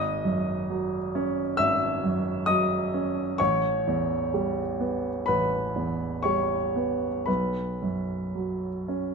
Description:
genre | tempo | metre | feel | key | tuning
classical, impressionist solo piano | 55-67 BPM | 4/4 | rubato | unclear | A4 = 441 Hz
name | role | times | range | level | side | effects
clear baby grand piano | solo | 0.0-9.1 s | G#1 to E6 | -24 LUFS | right 1 dB | none
room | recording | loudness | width
moderate recital hall reverb, RT60 1.6 s | close, detailed microphones | -24 LUFS | side -5 dB against mid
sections
0.0-9.1 A section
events
none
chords
0.0 F#sus2/G#; 3.4 A9; 7.3 Bsus2

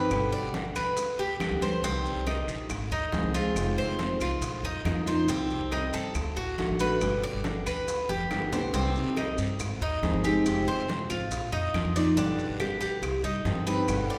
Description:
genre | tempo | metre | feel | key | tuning
latin, Cuban son and guajira | 139 BPM | 4/4 | straight | C minor | A4 = 441 Hz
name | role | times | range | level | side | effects
fingerpicked steel-string acoustic guitar | accompaniment | 0.0-14.2 s | B2 to Ab4 | -33 LUFS | equal | none
Cuban tres | arpeggios | 0.0-14.2 s | C4 to D5 | -34 LUFS | equal | none
upright bass | bass | 0.0-14.1 s | F1 to G2 | -36 LUFS | equal | none
bongos | percussion | 0.1-14.2 s | none | -41 LUFS | equal | none
claves | percussion | 0.1-14.1 s | none | -47 LUFS | equal | none
congas | percussion | 0.1-14.2 s | none | -39 LUFS | equal | none
guiro | percussion | 0.1-14.2 s | none | -46 LUFS | equal | none
maracas | percussion | 0.1-14.2 s | none | -47 LUFS | equal | none
room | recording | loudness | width
wet recital hall reverb, RT60 1.5 s | recorded in a church or concert hall | -29 LUFS | mono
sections
0.0-1.8 A section; 1.8-14.2 A section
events
drum fill 8.1-8.7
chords
0.1 G; 1.8 Cmadd9; 2.7 Ab; 3.6 Fm7; 4.4 Bbsus4; 5.3 Cm; 6.2 D; 7.0 G; 8.7 Cm; 9.6 Ab; 10.5 Fmadd9; 11.3 Bbsus4; 12.2 G; 13.0 Cm

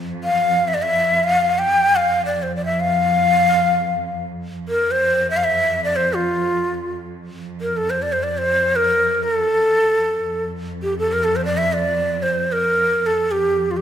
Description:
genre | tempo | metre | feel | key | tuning
Persian modal ensemble | free time | none | none | F dastgah mahur | A4 = 440 Hz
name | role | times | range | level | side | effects
warm studio cello section | drone | 0.0-13.8 s | F2 | -27 LUFS | right 1 dB | none
breathy ney | melody | 0.2-13.8 s | F4 to G5 | -17 LUFS | equal | none
room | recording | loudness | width
moderate scoring stage reverb, RT60 1.7 s | minimal, uncompressed stereo recording | -16 LUFS | side -9 dB against mid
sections
0.0-7.4 A section; 7.4-13.8 A section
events
none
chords
none

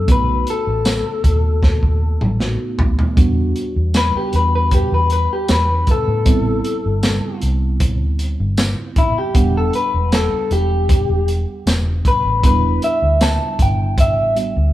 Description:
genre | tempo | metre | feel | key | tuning
straight-eighth soul blues | 78 BPM | 4/4 | straight | E minor | A4 = 440 Hz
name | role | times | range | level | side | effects
electric guitar through a small old amp | melody | 0.0-14.4 s | E4 to A5 | -19 LUFS | left 2 dB | spring reverb
tine electric piano | accompaniment | 0.0-14.7 s | G3 to F#5 | -25 LUFS | right 4 dB | phaser
vintage muted fingered electric bass | bass | 0.0-14.7 s | E1 to A2 | -18 LUFS | equal | none
crunchy breakbeat drum kit | drums | 0.1-14.6 s | hi-hat, kick drum, snare drum, tambourine, toms | -17 LUFS | equal | none
room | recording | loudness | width
light reverb | band playing live in one room | -14 LUFS | side -14 dB against mid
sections
0.0-3.2 A section; 3.2-14.7 B section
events
drum fill 1.6-3.2; clean electric guitar solo 3.2-14.7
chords
0.1 B7; 3.2 Em9; 6.3 Am9; 9.3 Em9

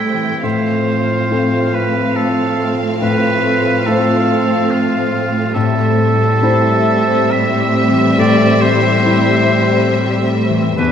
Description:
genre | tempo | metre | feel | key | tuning
cinematic, emotional film score for orchestra | 70 BPM | 3/4 | rubato | A minor | A4 = 439 Hz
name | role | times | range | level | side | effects
rich symphonic violin section | melody | 0.0-10.9 s | E5 to G5 | -24 LUFS | left 2 dB | none
warm oboe | second line | 0.0-10.9 s | E4 to E5 | -18 LUFS | right 2 dB | none
warm symphonic violin section | second line | 0.0-10.9 s | C4 to D4 | -23 LUFS | left 1 dB | none
clear grand piano | accompaniment | 0.0-10.9 s | E2 to C5 | -20 LUFS | left 3 dB | none
dark symphonic viola section | accompaniment | 0.0-10.9 s | G3 to B3 | -23 LUFS | right 3 dB | none
mellow French horn section | sustained chords | 0.0-10.9 s | F3 to D4 | -22 LUFS | left 1 dB | none
concert harp | arpeggios | 0.0-10.9 s | E2 to G5 | -21 LUFS | left 6 dB | none
rich symphonic cello section | bass | 0.0-10.9 s | E2 to A2 | -19 LUFS | right 3 dB | none
room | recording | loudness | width
wet scoring stage reverb, RT60 1.7 s | none | -12 LUFS | side -8 dB against mid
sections
0.0-10.9 A section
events
none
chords
0.4 F/A; 5.6 Am7

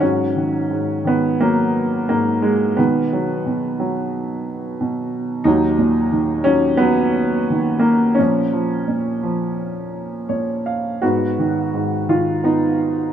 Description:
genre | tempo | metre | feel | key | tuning
classical, lyrical solo piano | 81-92 BPM | 4/4 | rubato | G# dorian | A4 = 440 Hz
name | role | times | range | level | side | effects
clear upright piano | solo | 0.0-13.1 s | D#2 to E#5 | -16 LUFS | right 1 dB | none
room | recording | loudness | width
moderate huge ambient reverb, RT60 4.6 s | none | -16 LUFS | side -9 dB against mid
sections
0.0-13.1 A section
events
upright piano fill 9.9-11.0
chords
0.0 G#5; 2.8 B; 5.5 D#m; 8.2 A#m; 11.0 G#m7

